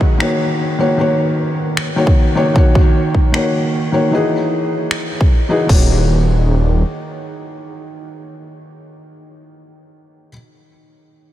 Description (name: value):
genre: future bass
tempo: 153 BPM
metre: 4/4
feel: half-time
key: Eb minor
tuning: A4 = 440 Hz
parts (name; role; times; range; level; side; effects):
- felt-muted upright piano; accompaniment; 0.0-11.3 s; Eb3 to Db5; -17 LUFS; left 1 dB; sidechain pumping, analog delay
- electronic kick drum; drums; 0.0-5.8 s; none; -12 LUFS; equal; studio reverb
- big-room dance drum kit; drums; 0.2-5.8 s; crash cymbal, finger snaps; -25 LUFS; left 1 dB; studio reverb
- wide detuned saw bass; bass; 5.7-6.8 s; Eb1; -14 LUFS; equal; chorus, sidechain pumping
room: moderate huge ambient reverb, RT60 7.0 s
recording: dreamy mix soaked in reverb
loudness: -12 LUFS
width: side -13 dB against mid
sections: 0.0-5.7 A section; 5.7-8.8 B section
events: none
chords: 0.0 Ebm7; 4.1 Emaj9; 5.7 Ebm7